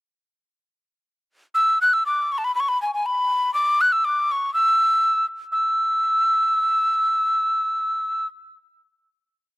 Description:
celtic folk, Celtic polka; 120 BPM; 2/4; swing 54% on 8ths; E mixolydian; A4 = 441 Hz
breathy mellow mid whistle; solo; 1.5-8.3 s; G#5 to F#6; -18 LUFS; equal; slapback echo
little or no reverb; recorded outdoors, with no room sound; -18 LUFS; side -18 dB against mid
1.5-5.5 A section; 5.5-7.5 final note

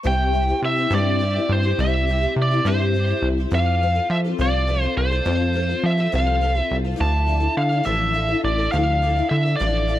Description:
folk rock and heartland rock; 69 BPM (dotted quarters); 6/8; straight; A4 = 440 Hz
picked twelve-string acoustic guitar; accompaniment; 0.0-10.0 s; C3 to A4; -25 LUFS; left 4 dB; ensemble chorus
biting lead guitar; melody; 0.1-10.0 s; C5 to A5; -22 LUFS; right 1 dB; overdrive, tape echo
plucky analog bass; bass; 0.1-10.0 s; A1 to F3; -21 LUFS; equal
light reverb; -18 LUFS; side -13 dB against mid
0.0-10.0 A section
0.0 C; 3.5 F; 7.0 Dmadd9

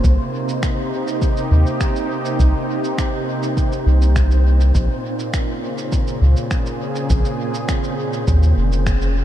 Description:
ambient dub; 102 BPM; 4/4; straight; Bb dorian; A4 = 440 Hz
warm analog pad; sustained chords; 0.0-9.2 s; Bb2 to C5; -23 LUFS; right 1 dB; chorus, tremolo
round analog bass; bass; 0.0-9.2 s; F1 to Eb2; -14 LUFS; equal
electronic kick drum; drums; 0.0-9.0 s; -20 LUFS; equal; overdrive, studio ambience
electronic shaker and finger snaps; drums; 0.0-9.1 s; -32 LUFS; right 1 dB; studio ambience, dub echo
wind-like tuned noise texture; texture; 0.0-9.2 s; C4 to C5; -29 LUFS; right 2 dB; built-in reverb, lush chorus
light reverb; -16 LUFS; side -12 dB against mid
0.0-9.2 A section
band accent 8.9
0.0 Cm7; 4.7 Bbm7

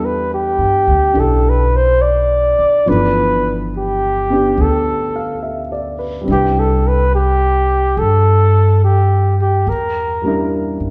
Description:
jazz ballad; 70 BPM; 4/4; swing 67% on 8ths; C major; A4 = 440 Hz
breathy flugelhorn; melody; 0.0-10.5 s; G4 to D5; -18 LUFS; equal
warm grand piano; accompaniment; 0.0-10.9 s; E3 to F5; -23 LUFS; equal
upright bass; bass; 0.0-10.9 s; G1 to G2; -19 LUFS; equal
wet recital hall reverb, RT60 1.8 s; recorded in a church or concert hall; -15 LUFS; mono
0.0-10.9 A section
0.0 Em7; 2.9 G13; 6.3 Cmaj9; 9.7 Em7b5

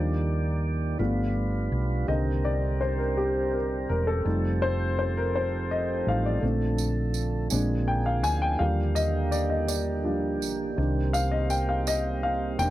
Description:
slow gospel; 55 BPM (dotted quarters); 6/8; straight; A4 = 442 Hz
dark upright piano; accompaniment; 0.0-12.7 s; D3 to Ab5; -28 LUFS; left 2 dB
tonewheel organ; sustained chords; 0.0-12.7 s; D3 to D5; -31 LUFS; right 4 dB; slow rotary speaker
hollow-body short-scale fingered electric bass; bass; 0.0-12.7 s; E1 to Eb2; -28 LUFS; equal
tambourine; percussion; 6.8-12.7 s; -35 LUFS; right 14 dB
small room ambience; dry, close 1970s-style studio recording; -24 LUFS; side -15 dB against mid
0.0-12.7 A section
upright piano solo 0.0-12.7
0.0 Ebmaj7; 1.0 G7; 2.1 Cm7; 4.3 F7; 6.4 Bbmaj7; 7.5 Bb7; 8.6 Ebmaj7; 10.8 Cm7

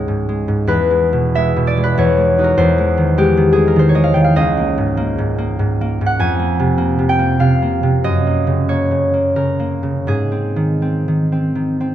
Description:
classical, solo harp piece; 73-102 BPM; 3/4; rubato; A4 = 440 Hz
concert harp; solo; 0.0-11.9 s; Db2 to Ab5; -13 LUFS; equal
moderate recital hall reverb, RT60 1.8 s; close, detailed microphones; -13 LUFS; side -11 dB against mid
0.0-11.9 A section
0.0 Dbsus2; 0.7 E; 2.0 Gbsus2/Fb; 2.6 Emaj7#5; 4.4 Dbsus2; 6.2 Fm11; 8.0 Gbadd9; 10.1 Ab

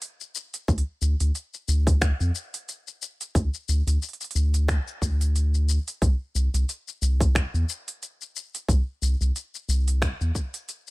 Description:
folktronica; 90 BPM; 4/4; swing 56% on 16ths; D minor; A4 = 440 Hz
organic electronic drum kit; drums; 0.0-10.9 s; finger snaps, hi-hat, shaker; -31 LUFS; left 2 dB
round analog bass; bass; 0.7-10.3 s; C2 to F2; -22 LUFS; equal
electronic kick drum; drums; 0.7-10.5 s; -24 LUFS; equal
little or no reverb; -23 LUFS; side -22 dB against mid
0.0-10.9 A section
fade-out 9.6-10.9

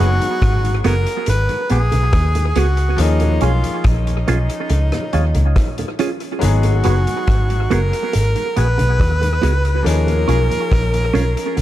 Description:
lovers rock reggae; 70 BPM; 4/4; straight; G# dorian; A4 = 439 Hz
clear tenor saxophone; melody; 0.0-11.6 s; D#4 to B4; -22 LUFS; right 1 dB; tape echo
bright concert grand piano; accompaniment; 0.0-11.6 s; E#3 to G#4; -26 LUFS; left 5 dB; tape echo
mellow tonewheel organ; accompaniment; 0.0-11.2 s; D#2 to F#4; -30 LUFS; left 4 dB
semi-hollow electric guitar; stabs; 0.0-11.2 s; B3 to G#4; -25 LUFS; right 5 dB; phaser, tape echo
vintage muted picked electric bass; bass; 0.0-11.6 s; F#1 to D#2; -16 LUFS; equal
vintage drum kit; drums; 0.2-11.6 s; hi-hat, kick drum, rim click; -22 LUFS; equal; tape echo
bongos; percussion; 0.9-11.6 s; -30 LUFS; right 5 dB
light reverb, studio ambience; dark, warm production; -14 LUFS; side -13 dB against mid
0.0-11.6 A section
0.0 G#m7; 3.0 D#9sus4; 6.4 G#m7; 9.9 D#9sus4

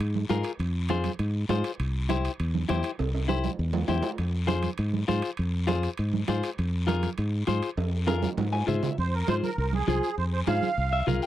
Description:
latin, cumbia; 200 BPM; 4/4; straight; F harmonic minor; A4 = 440 Hz
fingered electric bass; bass; 0.0-11.2 s; C2 to Ab2; -27 LUFS; equal
congas; percussion; 0.0-11.2 s; -32 LUFS; right 8 dB
guiro; percussion; 0.0-11.3 s; -44 LUFS; left 6 dB
timbales; percussion; 0.0-8.9 s; -37 LUFS; right 6 dB
clean electric guitar; accompaniment; 0.3-11.3 s; E4 to Ab5; -28 LUFS; left 6 dB
musette accordion; melody; 9.0-11.0 s; Ab4 to F5; -30 LUFS; right 5 dB; tape echo
little or no reverb; dry, close 1970s-style studio recording; -25 LUFS; side -13 dB against mid
0.0-9.0 A section; 9.0-11.3 B section
drum fill 3.0-4.2, 7.8-9.0; clean electric guitar fill 8.4-9.0, 10.8-11.3
0.0 Fm; 1.8 C; 4.2 Fm

